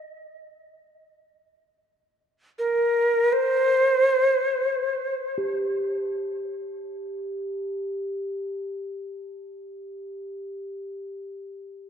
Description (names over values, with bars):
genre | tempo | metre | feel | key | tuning
world meditative, free-time meditation music | free time | none | none | unclear | A4 = 440 Hz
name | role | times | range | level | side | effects
breathy Native American-style cedar flute | melody | 2.6-5.2 s | Bb4 to C5 | -21 LUFS | equal | ping-pong delay
quartz singing bowl | texture | 5.4-10.3 s | G4 | -31 LUFS | equal | none
room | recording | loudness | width
wet church reverb, RT60 3.5 s | dark, warm production | -22 LUFS | side -8 dB against mid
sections
0.0-5.4 A section; 5.4-9.7 B section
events
none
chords
none